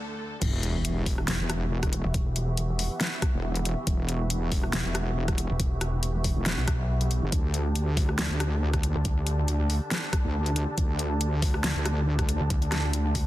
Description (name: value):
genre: heavy wobble dubstep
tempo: 139 BPM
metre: 4/4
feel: swing 54% on 16ths, half-time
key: E minor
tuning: A4 = 440 Hz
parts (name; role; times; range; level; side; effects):
- clear symphonic string section; sustained chords; 0.0-13.3 s; D2 to A5; -36 LUFS; right 1 dB; sidechain pumping, low-pass filter
- wobble bass; bass; 0.4-12.4 s; E1 to D2; -27 LUFS; equal; chorus, overdrive
- dubstep drum kit; drums; 0.4-13.2 s; crash cymbal, hi-hat, rim click, snare drum; -31 LUFS; left 1 dB; overdrive, high-pass filter on snare, small room ambience, high-pass filter on hats, high-pass filter on cymbals
- electronic kick drum; drums; 0.4-13.2 s; none; -27 LUFS; equal; overdrive, small room ambience
- sub drop; sound effects; 0.4-2.1 s; none; -36 LUFS; equal; none
- pulsing pluck wobble bass; bass; 1.3-13.2 s; E1 to D2; -26 LUFS; equal; chorus, overdrive
room: little or no reverb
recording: dense, heavily limited modern master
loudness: -24 LUFS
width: side -15 dB against mid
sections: 0.4-13.3 A section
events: break 0.0-0.4; drop 0.4-13.3; impact 0.4-2.1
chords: 0.4 Emadd9; 7.3 Dsus4